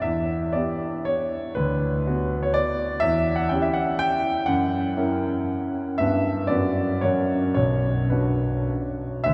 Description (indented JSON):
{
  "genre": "classical, romantic triple-time dance for piano with dotted rhythms",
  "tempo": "101-132 BPM",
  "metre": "3/4",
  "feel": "rubato",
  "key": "B minor",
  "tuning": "A4 = 440 Hz",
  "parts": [
    { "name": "warm grand piano", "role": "solo", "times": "0.0-9.3 s", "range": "B1 to G5", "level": "-24 LUFS", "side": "equal", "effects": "none" }
  ],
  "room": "wet cathedral reverb, RT60 6.8 s",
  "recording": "dark, warm production",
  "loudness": "-24 LUFS",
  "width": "mono",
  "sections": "0.0-9.3 A section",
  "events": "none",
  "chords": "0.0 Em; 1.6 Bm/D; 3.0 C#dim/E; 4.5 F#7; 6.0 G; 6.5 Bm/F#; 7.0 F#; 7.6 Bm",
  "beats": "| 0.03 0.54 1.06 | 1.55 2.06 2.56 | 3.02 3.50 4.00 | 4.47 4.96 5.48 | 5.99 6.50 7.03 | 7.55 8.12 8.70 | 9.25"
}